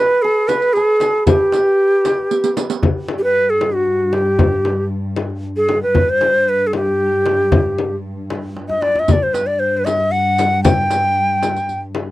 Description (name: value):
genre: Persian modal ensemble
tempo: 77 BPM (dotted quarters)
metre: 6/8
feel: straight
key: G dastgah chahargah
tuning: A4 = 440 Hz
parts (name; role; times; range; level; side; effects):
- bright reedy ney; melody; 0.0-11.8 s; F#4 to G5; -15 LUFS; equal; none
- santur; second line; 0.0-4.4 s; G4 to B4; -23 LUFS; right 4 dB; none
- frame drum; percussion; 0.5-12.1 s; none; -20 LUFS; left 5 dB; none
- riq; percussion; 0.5-2.8, 9.1-11.8 s; none; -27 LUFS; right 9 dB; none
- tombak; percussion; 0.5-12.1 s; none; -21 LUFS; equal; none
- dark studio cello section; drone; 2.8-12.1 s; G2; -24 LUFS; equal; none
room: light reverb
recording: dry, close 1970s-style studio recording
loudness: -14 LUFS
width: side -16 dB against mid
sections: 0.0-2.8 A section; 2.8-12.1 B section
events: drum fill 2.3-2.8, 8.6-9.1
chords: none